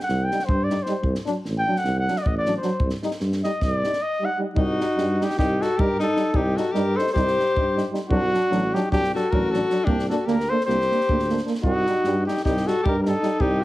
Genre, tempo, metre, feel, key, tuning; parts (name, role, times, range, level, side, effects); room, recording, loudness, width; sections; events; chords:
balkan folk, Balkan brass band; 306 BPM (eighths); 9/8; straight; C dorian sharp4; A4 = 439 Hz
mellow flugelhorn; melody; 0.0-13.6 s; F#4 to G5; -24 LUFS; equal; plate reverb
compact cocktail drum kit; percussion; 0.0-13.5 s; kick drum, snare drum; -28 LUFS; equal
mellow tuba; bass; 0.1-13.6 s; A1 to G2; -26 LUFS; equal
clear euphonium; accompaniment; 0.3-13.5 s; D4 to Eb4; -32 LUFS; left 4 dB
warm euphonium; accompaniment; 0.3-13.5 s; F#3 to Bb3; -28 LUFS; right 3 dB
dark alto saxophone; second line; 4.5-13.6 s; D4 to A4; -27 LUFS; left 2 dB
moderate small room reverb, RT60 0.5 s; heavily compressed radio sound; -20 LUFS; side -16 dB against mid
0.0-4.6 A section; 4.6-13.6 B section
flugelhorn solo 0.0-4.6
0.0 Cm; 1.0 D; 2.8 Cm; 8.1 D; 9.9 Gm/C; 11.6 Cm